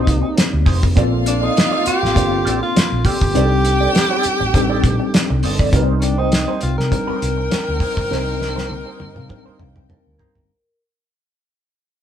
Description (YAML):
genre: lush 1970s-style soul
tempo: 101 BPM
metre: 4/4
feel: swing 54% on 16ths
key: C dorian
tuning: A4 = 440 Hz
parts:
  - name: warm tenor saxophone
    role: melody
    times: 0.0-9.9 s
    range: Db4 to Bb4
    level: -22 LUFS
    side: equal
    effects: none
  - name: tine electric piano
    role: accompaniment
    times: 0.0-10.5 s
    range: G3 to Bb5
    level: -22 LUFS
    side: left 3 dB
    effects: medium stereo tremolo
  - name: electric guitar through a small old amp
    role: riff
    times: 0.0-10.4 s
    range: Bb3 to D5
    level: -26 LUFS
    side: right 7 dB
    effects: wah
  - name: vintage muted fingered electric bass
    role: bass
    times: 0.0-10.5 s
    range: F1 to C3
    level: -20 LUFS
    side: equal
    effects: none
  - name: cloth-damped thuddy drum kit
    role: drums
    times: 0.1-10.5 s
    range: hi-hat, kick drum, snare drum, toms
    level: -18 LUFS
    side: equal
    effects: none
  - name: rich studio violin section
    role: second line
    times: 1.0-10.4 s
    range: Eb4 to G5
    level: -26 LUFS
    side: right 2 dB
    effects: none
  - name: vibraphone with medium hard mallets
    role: texture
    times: 1.9-10.7 s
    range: Bb4 to C6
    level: -32 LUFS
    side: left 2 dB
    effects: none
room: light reverb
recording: band playing live in one room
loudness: -15 LUFS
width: side -9 dB against mid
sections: 0.0-5.7 A section; 5.7-10.5 B section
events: fade-out 5.7-10.5; drum fill 8.1-10.5; tine electric piano fill 8.7-10.5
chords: 0.0 Cm7; 1.0 Bbmaj9; 3.3 Cm69; 5.7 Cm7